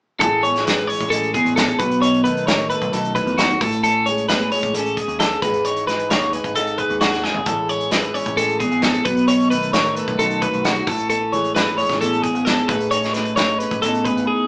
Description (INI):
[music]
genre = math rock and midwest emo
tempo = 132 BPM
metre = 4/4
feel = straight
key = A lydian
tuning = A4 = 443 Hz
[part]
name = twelve-string electric guitar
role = accompaniment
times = 0.2-14.5 s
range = E2 to G#4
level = -21 LUFS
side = equal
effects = phaser
[part]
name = twelve-string electric guitar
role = arpeggios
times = 0.2-14.5 s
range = F#4 to C#5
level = -20 LUFS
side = equal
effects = none
[part]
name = picked electric bass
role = bass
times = 0.2-14.3 s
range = G#1 to E2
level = -30 LUFS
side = equal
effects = none
[part]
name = loose indie drum kit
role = drums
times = 0.2-14.3 s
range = hi-hat, kick drum, snare drum, toms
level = -22 LUFS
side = equal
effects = none
[sound]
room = wet studio reverb, RT60 0.5 s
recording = band playing live in one room, small speaker sound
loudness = -16 LUFS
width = side -28 dB against mid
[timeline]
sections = 0.2-14.5 A section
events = drum fill 7.2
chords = 0.2 Amaj7; 1.8 B7; 3.6 Amaj7; 5.4 Emaj7/G#; 7.5 Amaj7; 9.1 B7; 10.9 Amaj7; 12.7 Amaj9#11